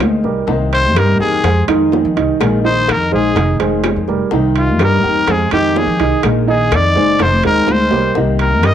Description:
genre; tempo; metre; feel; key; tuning
latin, Cuban son and guajira; 125 BPM; 4/4; straight; unclear; A4 = 440 Hz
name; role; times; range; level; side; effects
flamenco guitar; accompaniment; 0.0-8.7 s; C3 to G4; -21 LUFS; left 10 dB; cassette tape
dark grand piano; arpeggios; 0.0-8.7 s; Eb3 to Eb5; -17 LUFS; right 8 dB; cassette tape
upright bass; bass; 0.0-8.7 s; F1 to F3; -16 LUFS; left 1 dB; none
bongos; percussion; 0.0-8.7 s; none; -24 LUFS; left 11 dB; none
claves; percussion; 0.0-8.7 s; none; -30 LUFS; left 12 dB; none
timbales; percussion; 0.0-8.7 s; none; -24 LUFS; right 10 dB; none
growling trumpet; melody; 0.7-8.7 s; F4 to Eb5; -16 LUFS; left 1 dB; cassette tape
room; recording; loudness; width
light reverb, small room reverb; home recording on cassette; -11 LUFS; side -10 dB against mid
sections
0.0-8.7 A section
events
trumpet solo 0.0-8.7; drum fill 7.7-8.2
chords
0.5 Cm7; 1.4 Fm7; 2.4 Bb7sus4; 3.4 Fm7; 4.3 Cm7; 5.3 Fm7; 6.2 Bb7sus4; 7.2 Fm7; 8.2 Cm7

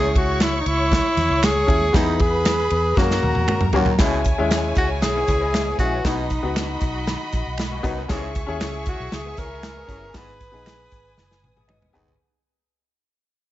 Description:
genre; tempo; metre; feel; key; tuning
uptempo 1960s-style soul; 117 BPM; 4/4; straight; unclear; A4 = 442 Hz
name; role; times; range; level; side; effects
warm tenor saxophone; melody; 0.0-11.7 s; D#4 to B4; -23 LUFS; equal; none
warm symphonic violin section; second line; 0.0-12.2 s; E4 to D#6; -29 LUFS; left 1 dB; none
clear concert grand piano; accompaniment; 0.0-12.2 s; G#3 to G#5; -26 LUFS; left 4 dB; none
edgy baritone saxophone; riff; 0.0-12.1 s; D#2 to B2; -33 LUFS; right 6 dB; none
vintage muted fingered electric bass; bass; 0.0-12.2 s; F#1 to F#3; -26 LUFS; equal; none
natural country drum kit; drums; 0.2-12.2 s; hi-hat, kick drum, ride cymbal, snare drum, toms; -23 LUFS; equal; none
congas; percussion; 0.4-11.9 s; none; -35 LUFS; right 2 dB; none
finger snaps; percussion; 0.4-11.8 s; none; -32 LUFS; right 6 dB; none
electric guitar through a small old amp; riff; 5.2-12.2 s; D#3 to G#4; -36 LUFS; left 8 dB; ensemble chorus
room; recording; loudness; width
light reverb, small room ambience; nothing above 7.8 kHz; -18 LUFS; side -14 dB against mid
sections
0.0-4.0 A section; 4.0-12.2 B section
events
drum fill 3.0-4.0, 11.2-12.2; fade-out 4.0-12.2; grand piano fill 11.4-12.2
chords
0.0 C#m; 1.9 E; 3.0 F#; 4.0 C#m; 6.0 B; 8.1 C#m; 10.1 G#m

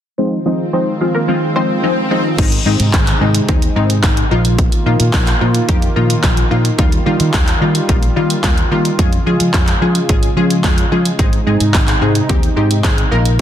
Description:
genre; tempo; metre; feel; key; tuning
dance-pop; 109 BPM; 4/4; straight; Ab major; A4 = 442 Hz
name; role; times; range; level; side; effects
analog pluck; melody; 0.2-1.7 s; Bb3 to Eb5; -22 LUFS; left 1 dB; chorus, sidechain pumping, low-pass filter, dub echo
punchy chord stab; accompaniment; 0.2-13.4 s; Eb3 to Bb4; -18 LUFS; left 2 dB; chorus, sidechain pumping, low-pass filter
warm analog pad; sustained chords; 0.2-13.4 s; C3 to F4; -22 LUFS; right 1 dB; chorus, sidechain pumping, low-pass filter
swell; sound effects; 0.7-2.4 s; none; -22 LUFS; left 2 dB; none
vintage muted fingered electric bass; bass; 2.4-13.4 s; Ab1 to F3; -16 LUFS; equal; sidechain pumping
house drum kit; drums; 2.4-13.4 s; crash cymbal, handclaps, hi-hat, kick drum; -15 LUFS; equal; overdrive
room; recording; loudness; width
digital ambience; dense, heavily limited modern master; -12 LUFS; side -10 dB against mid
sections
0.2-2.4 A section; 2.4-13.4 B section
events
filter sweep 0.2-2.4; swell 0.7-2.4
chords
0.2 Fm7; 2.4 Ab; 4.3 Bbsus4; 9.0 Db/F; 11.2 Ab

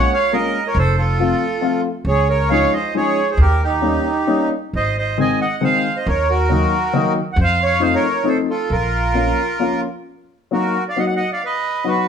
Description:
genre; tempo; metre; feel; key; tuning
musette waltz; 136 BPM; 3/4; straight; Bb minor; A4 = 440 Hz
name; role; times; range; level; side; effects
accordion; melody; 0.0-12.1 s; Eb4 to Ab5; -18 LUFS; right 2 dB; none
dark upright piano; accompaniment; 0.0-12.1 s; Eb3 to Gb4; -20 LUFS; left 4 dB; none
upright bass; bass; 0.7-9.3 s; F1 to F2; -18 LUFS; equal; none
room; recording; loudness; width
moderate large studio reverb, RT60 1.0 s; band playing live in one room; -15 LUFS; side -7 dB against mid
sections
0.0-10.1 A section; 10.1-12.1 B section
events
none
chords
0.0 Bbm7; 0.8 F; 2.1 Dbadd9; 3.4 Eb7; 4.7 Ab; 6.1 Ebm; 7.4 F7; 8.7 Bbm; 10.1 Ebm; 11.4 B

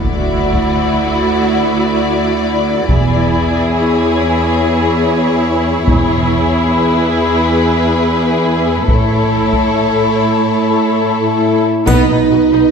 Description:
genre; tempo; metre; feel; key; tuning
cinematic, epic orchestral film score; free time; none; none; unclear; A4 = 441 Hz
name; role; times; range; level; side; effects
warm symphonic violin section; melody; 0.0-12.7 s; B4 to D#5; -22 LUFS; left 5 dB; none
warm symphonic violin section; second line; 0.0-12.7 s; F#4 to B4; -18 LUFS; left 3 dB; none
rich symphonic viola section; accompaniment; 0.0-12.6 s; B3 to F#4; -18 LUFS; equal; none
rich studio cello section; bass; 0.0-12.6 s; D2 to B2; -16 LUFS; right 1 dB; none
rich studio double bass section; bass; 0.0-0.3, 2.9-3.3, 5.9-6.3, 8.9-9.3, 11.9-12.6 s; E1 to D2; -19 LUFS; right 2 dB; none
impact; sound effects; 0.0-1.4 s; none; -23 LUFS; equal; none
solo taiko drums; drums; 0.5-12.7 s; none; -19 LUFS; equal; none
warm French horn section; sustained chords; 11.2-12.7 s; D#4 to E4; -12 LUFS; right 2 dB; none
triangle; percussion; 11.9-12.7 s; none; -32 LUFS; right 1 dB; none
room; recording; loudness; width
wet recital hall reverb, RT60 1.7 s; heard from further back in the room; -11 LUFS; side -6 dB against mid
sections
0.0-11.9 A section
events
build-up 0.0-11.9; impact 0.0-1.4; band accent 11.9-12.3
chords
0.0 Dadd9; 2.9 C#m/E; 8.9 A; 11.9 B

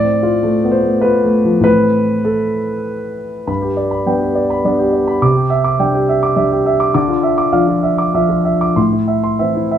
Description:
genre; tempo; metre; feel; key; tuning
neoclassical minimalist piano; 94-106 BPM; 3/4; rubato; unclear; A4 = 440 Hz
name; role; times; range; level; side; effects
warm concert grand piano; solo; 0.0-9.8 s; G2 to D6; -12 LUFS; equal; none
room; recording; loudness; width
moderate small room reverb, RT60 0.5 s; band playing live in one room; -12 LUFS; side -9 dB against mid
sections
0.0-3.5 A section; 3.5-9.8 B section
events
none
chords
0.0 F/A; 1.6 Amadd9; 3.5 G; 5.2 Cadd9; 7.0 Dmadd9; 8.8 Am

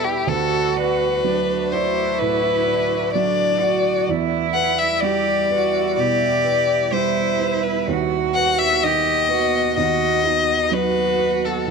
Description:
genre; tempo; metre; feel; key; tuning
neoclassical piano and strings; 63 BPM; 4/4; rubato; unclear; A4 = 441 Hz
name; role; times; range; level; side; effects
rich violin; melody; 0.0-11.7 s; G4 to F#5; -20 LUFS; left 6 dB; none
clear cello; second line; 0.0-11.7 s; D4 to G4; -23 LUFS; right 10 dB; none
felt-muted upright piano; accompaniment; 0.0-11.7 s; D2 to D5; -24 LUFS; right 9 dB; none
deep dark ambient pad; sustained chords; 0.0-11.7 s; G3 to F#5; -31 LUFS; equal; chorus, built-in reverb
room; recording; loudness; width
moderate plate reverb, RT60 3.7 s; 1960s-style stereo with parts hard left and right; -17 LUFS; side -5 dB against mid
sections
0.0-11.7 A section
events
none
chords
0.3 D; 4.1 Em; 7.9 B/D#

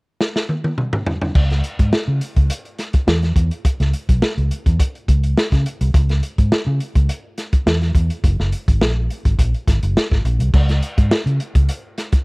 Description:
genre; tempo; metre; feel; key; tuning
funk; 104 BPM; 4/4; straight; C# dorian; A4 = 440 Hz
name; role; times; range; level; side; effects
crunchy breakbeat drum kit; drums; 0.2-12.2 s; crash cymbal, hi-hat, kick drum, snare drum, toms; -17 LUFS; equal; none
vintage muted fingered electric bass; bass; 1.4-11.7 s; F#1 to C#3; -17 LUFS; equal; none
room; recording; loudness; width
little or no reverb; dry, close 1970s-style studio recording; -16 LUFS; side -33 dB against mid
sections
0.0-1.4 A section; 1.4-10.5 B section; 10.5-12.2 C section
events
drum fill 0.2-1.4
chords
none

